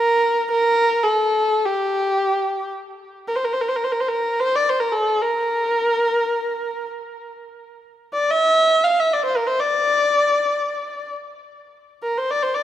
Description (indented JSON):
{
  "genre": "Turkish makam ensemble",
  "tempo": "free time",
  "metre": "none",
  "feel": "none",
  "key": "unclear",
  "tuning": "A4 = 441 Hz",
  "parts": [
    { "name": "warm kamancheh", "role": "solo", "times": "0.0-12.6 s", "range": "G4 to F5", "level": "-18 LUFS", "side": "equal", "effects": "tape echo" }
  ],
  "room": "moderate recital hall reverb, RT60 1.5 s",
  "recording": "none",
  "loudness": "-17 LUFS",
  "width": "side -11 dB against mid",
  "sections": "0.0-12.6 A section",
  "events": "none",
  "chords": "none"
}